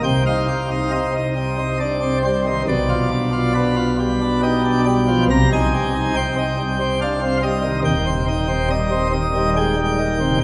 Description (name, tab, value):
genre	classical, chorale-style piece for pipe organ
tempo	69 BPM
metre	3/4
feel	rubato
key	C minor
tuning	A4 = 441 Hz
part	pipe organ, plenum	solo	0.0-10.4 s	Eb1 to Bb5	-19 LUFS	equal	none
room	wet church reverb, RT60 3.2 s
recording	recorded in a church or concert hall, nothing above 10.4 kHz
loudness	-19 LUFS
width	mono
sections	0.0-10.4 A section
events	none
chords	0.0 Cm; 2.7 G7/B; 5.3 Cm; 7.9 Cm/Eb